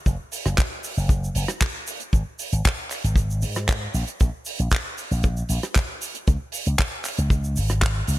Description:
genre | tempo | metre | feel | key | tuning
nu-disco, nu disco | 116 BPM | 4/4 | straight | unclear | A4 = 440 Hz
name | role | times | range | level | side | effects
slap bass with an envelope filter | bass | 0.1-8.2 s | F#1 to G#2 | -23 LUFS | equal | none
damped 70s drum kit | drums | 0.1-8.2 s | handclaps, hi-hat, rim click, shaker | -28 LUFS | right 1 dB | none
kick drum | drums | 0.1-7.9 s | none | -20 LUFS | equal | none
room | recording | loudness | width
little or no reverb | bright 1980s-style digital production | -21 LUFS | side -16 dB against mid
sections
0.0-8.2 A section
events
none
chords
none

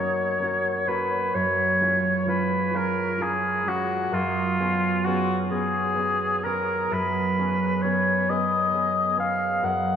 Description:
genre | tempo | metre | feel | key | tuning
classical, romantic duo for oboe and harp | 43 BPM (dotted quarters) | 12/8 | rubato | unclear | A4 = 442 Hz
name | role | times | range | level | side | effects
warm oboe | melody | 0.0-10.0 s | E#4 to F#5 | -23 LUFS | left 1 dB | none
concert harp | accompaniment | 0.0-10.0 s | F#2 to G#4 | -26 LUFS | right 2 dB | none
room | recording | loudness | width
wet cathedral reverb, RT60 5.2 s | in a vast, echoing space | -22 LUFS | side -8 dB against mid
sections
0.0-10.0 A section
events
none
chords
0.0 F#; 1.3 C#/F#; 4.1 C#7/F#

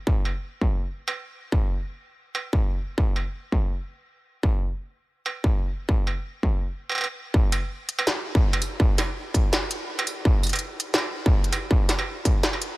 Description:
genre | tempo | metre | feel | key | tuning
drum and bass | 165 BPM | 4/4 | swing 54% on 16ths, half-time | none | none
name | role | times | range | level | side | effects
electronic kick drum | drums | 0.1-12.3 s | none | -22 LUFS | equal | distortion, studio reverb
industrial drum kit | drums | 0.3-12.7 s | hi-hat, snare drum, struck metal, tambourine | -26 LUFS | right 1 dB | studio reverb
room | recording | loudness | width
little or no reverb | heavily compressed radio sound | -22 LUFS | side -20 dB against mid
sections
0.0-7.3 A section; 7.3-12.8 B section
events
drop 7.3-12.8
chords
none

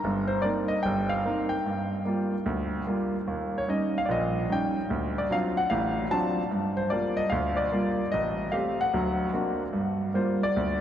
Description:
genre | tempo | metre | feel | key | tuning
solo jazz | 148 BPM | 4/4 | swing 66% on 8ths | G minor | A4 = 440 Hz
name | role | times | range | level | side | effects
warm concert grand piano | solo | 0.0-10.8 s | G1 to A5 | -25 LUFS | equal | none
room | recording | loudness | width
wet cathedral reverb, RT60 5.4 s | recorded in a church or concert hall | -25 LUFS | side -10 dB against mid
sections
0.0-9.7 A section; 9.7-10.8 B section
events
grand piano solo 9.7-10.8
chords
0.0 Cm7; 1.6 Gm7; 3.3 Eb7; 4.9 D7#9; 6.5 Gm7; 8.1 Am7b5; 8.9 D7b13; 9.7 Gm7

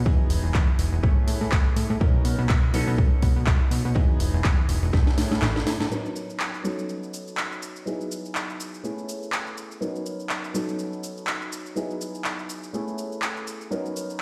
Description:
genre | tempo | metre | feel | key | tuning
filtered disco house | 123 BPM | 4/4 | swing 57% on 16ths | B major | A4 = 440 Hz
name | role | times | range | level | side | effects
bright concert grand piano | accompaniment | 0.0-14.2 s | F#3 to A#4 | -34 LUFS | equal | phaser, sidechain pumping, low-pass filter
plucky analog bass | bass | 0.0-5.9 s | E1 to B2 | -27 LUFS | equal | sidechain pumping, low-pass filter
electronic kick drum | drums | 0.1-5.0 s | none | -23 LUFS | equal | overdrive
house drum kit | drums | 0.3-14.2 s | handclaps, hi-hat, shaker, snare drum | -33 LUFS | equal | overdrive, sidechain pumping on hats, sidechain pumping on perc
room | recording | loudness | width
light reverb | played on a big sound system in a bare room, stone room reverb | -25 LUFS | mono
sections
0.0-5.9 A section; 5.9-14.2 B section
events
drum fill 4.9-5.9; break 5.4-5.9; band accent 5.8; filter sweep on grand piano 5.9-14.2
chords
0.1 Emaj7; 1.0 Amaj7; 2.0 Bmaj9; 2.7 B7; 4.0 Emaj7; 4.9 Amaj7; 5.9 Bmaj9; 6.6 B7; 7.9 Emaj7; 8.8 Amaj7; 9.8 Bmaj9; 10.5 B7; 11.8 Emaj7; 12.7 Amaj7; 13.7 Bmaj9

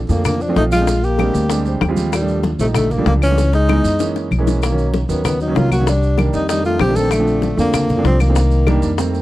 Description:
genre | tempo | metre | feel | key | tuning
Afro-Cuban jazz | 192 BPM | 4/4 | straight | Bb major | A4 = 440 Hz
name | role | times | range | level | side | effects
upright bass | bass | 0.0-9.2 s | Bb1 to Gb2 | -18 LUFS | equal | none
breathy tenor saxophone | melody | 0.1-9.0 s | G3 to A4 | -20 LUFS | equal | tape echo
breathy trombone | second line | 0.1-9.2 s | Bb2 to C4 | -24 LUFS | left 5 dB | none
warm concert grand piano | accompaniment | 0.1-9.2 s | D#3 to G5 | -22 LUFS | right 4 dB | none
congas | percussion | 0.1-9.2 s | none | -25 LUFS | left 1 dB | none
maracas | percussion | 0.1-9.2 s | none | -34 LUFS | right 8 dB | none
bongos | percussion | 0.3-9.2 s | none | -24 LUFS | left 9 dB | none
claves | percussion | 0.3-8.8 s | none | -28 LUFS | left 9 dB | none
room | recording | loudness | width
little or no reverb | dry, close 1970s-style studio recording | -14 LUFS | side -16 dB against mid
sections
0.0-9.2 A section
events
grand piano fill 1.5-2.1; drum fill 3.4-4.6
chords
0.0 Bbmaj7; 0.9 Bb13; 2.1 Ebmaj9#11; 3.4 Dbm7; 4.0 Gb7; 4.6 Bmaj7; 5.9 Cm7; 6.5 F13; 7.1 Bbmaj7; 8.4 Cm7

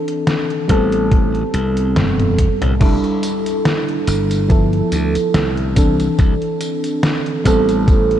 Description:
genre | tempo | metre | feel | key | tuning
vaporwave | 71 BPM | 4/4 | swing 55% on 16ths | unclear | A4 = 440 Hz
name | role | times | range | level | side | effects
mellow FM electric piano | accompaniment | 0.0-8.2 s | E3 to A4 | -17 LUFS | right 1 dB | wide subtle chorus, diffuse ambient delay
detuned 8-bit digital drum machine | drums | 0.1-8.2 s | crash cymbal, hi-hat, snare drum, tambourine, toms | -21 LUFS | left 1 dB | vintage 12-bit sampler grit
glassy slap bass | bass | 0.7-8.2 s | E1 to D2 | -19 LUFS | equal | tube saturation
electronic kick drum | drums | 0.7-8.1 s | none | -14 LUFS | equal | vintage 12-bit sampler grit
room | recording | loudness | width
moderate huge ambient reverb, RT60 6.7 s | dreamy mix soaked in reverb | -14 LUFS | side -11 dB against mid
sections
0.0-2.8 A section; 2.8-8.2 B section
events
drum fill 2.0-2.8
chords
0.0 C69; 0.7 Am9; 2.8 Fmaj13 (rootless); 4.5 G13; 5.8 C69; 7.5 Am9

